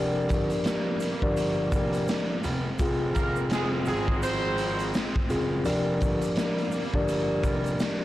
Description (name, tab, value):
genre	hip hop, boom-bap hip-hop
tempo	84 BPM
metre	4/4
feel	swing 62% on 16ths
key	unclear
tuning	A4 = 440 Hz
part	mellow tine electric piano	accompaniment	0.0-8.0 s	F3 to D5	-28 LUFS	left 1 dB	medium stereo tremolo, cassette tape, high-pass filter, low-pass filter
part	warm studio string section	sustained chords	0.0-8.0 s	F3 to C4	-36 LUFS	right 1 dB	stereo widening, high-pass filter, low-pass filter
part	warm grand piano	bass	0.0-7.7 s	F1 to Ab1	-31 LUFS	right 1 dB	transformer saturation
part	raw garage drum kit	drums	0.3-8.0 s	hi-hat, kick drum, snare drum	-29 LUFS	equal	none
part	egg shaker	percussion	0.3-8.0 s	none	-48 LUFS	right 6 dB	none
part	clear horn section	stabs	3.1-4.9 s	Ab3 to C5	-32 LUFS	right 2 dB	high-pass filter, low-pass filter, digital delay
room	light reverb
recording	blown-out, overdriven recording, vinyl crackle, overdrive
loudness	-24 LUFS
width	side -15 dB against mid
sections	0.0-8.0 A section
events	none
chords	0.0 Gm7/F; 2.8 Fm; 5.7 Gm7/F